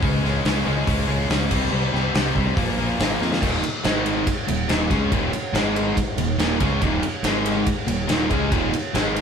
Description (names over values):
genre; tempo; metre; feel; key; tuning
classic rock; 141 BPM; 4/4; straight; Eb major; A4 = 440 Hz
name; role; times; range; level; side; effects
cranked stack guitar; riff; 0.0-9.2 s; Eb2 to Db4; -28 LUFS; right 6 dB; overdrive
distorted electric guitar; riff; 0.0-9.2 s; Eb2 to Db4; -26 LUFS; left 6 dB; overdrive
modern bright picked electric bass; bass; 0.0-9.2 s; Eb1 to F2; -26 LUFS; equal; none
big rock drum kit; drums; 0.0-9.2 s; crash cymbal, hi-hat, kick drum, ride cymbal, snare drum; -23 LUFS; equal; none
overdriven semi-hollow guitar; riff; 3.4-9.2 s; Eb2 to Db4; -27 LUFS; right 1 dB; none
room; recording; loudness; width
moderate studio reverb, RT60 0.8 s; band playing live in one room; -19 LUFS; side -7 dB against mid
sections
0.0-3.4 A section; 3.4-9.2 B section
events
drum fill 3.2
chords
0.0 Db5; 1.5 C5; 2.6 Bb5; 3.4 Eb5; 3.8 Ab5; 4.3 Eb5; 5.5 Ab5; 6.0 Eb5; 7.2 Ab5; 7.7 Eb5